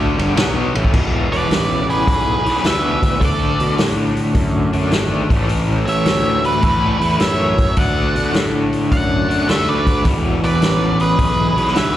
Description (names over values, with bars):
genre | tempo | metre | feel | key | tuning
blues rock power trio and southern rock | 105 BPM | 4/4 | swing 67% on 8ths | E mixolydian | A4 = 439 Hz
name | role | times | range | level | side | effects
crunchy overdriven guitar | riff | 0.0-12.0 s | E2 to D4 | -20 LUFS | left 1 dB | tremolo
fuzz picked electric bass | bass | 0.0-12.0 s | E1 to B2 | -20 LUFS | equal | overdrive
vintage drum kit | drums | 0.2-11.9 s | crash cymbal, hi-hat, kick drum, ride cymbal, snare drum | -20 LUFS | equal | none
octave-fuzz lead guitar | melody | 1.3-12.0 s | B4 to F#5 | -20 LUFS | right 1 dB | distortion, plate reverb, slapback echo
nasal lead guitar with a parked wah | second line | 1.3-12.0 s | E4 to D5 | -25 LUFS | right 2 dB | overdrive, plate reverb, slapback echo
room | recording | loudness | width
light reverb | live gig heard through the venue's PA, recital hall reverb | -14 LUFS | side -12 dB against mid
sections
0.9-12.0 A section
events
none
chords
0.0 E5; 0.9 E; 3.2 D; 5.2 A; 7.8 D; 10.1 E